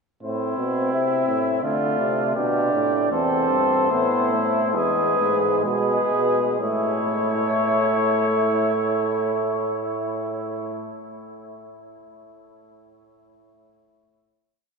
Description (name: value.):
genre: classical, imitative canzona for brass ensemble.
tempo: 60-86 BPM.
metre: 4/4.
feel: straight.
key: A minor.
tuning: A4 = 440 Hz.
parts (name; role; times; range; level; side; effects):
dark cornet; melody; 0.2-10.9 s; B4 to E5; -25 LUFS; left 8 dB; none.
warm flugelhorn; second line; 0.2-10.9 s; E4 to A4; -26 LUFS; right 4 dB; none.
warm trombone; accompaniment; 0.2-10.9 s; G#3 to D4; -26 LUFS; right 1 dB; none.
warm euphonium; bass; 0.2-10.9 s; E2 to D3; -27 LUFS; right 3 dB; none.
room: wet cathedral reverb, RT60 6.8 s.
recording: none.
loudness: -20 LUFS.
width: side -4 dB against mid.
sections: 0.2-6.6 exposition; 6.6-10.6 final chord.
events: slowing down 0.2-8.6.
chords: 0.2 Am; 1.6 Dm; 3.1 Am/E; 4.7 E; 6.6 A.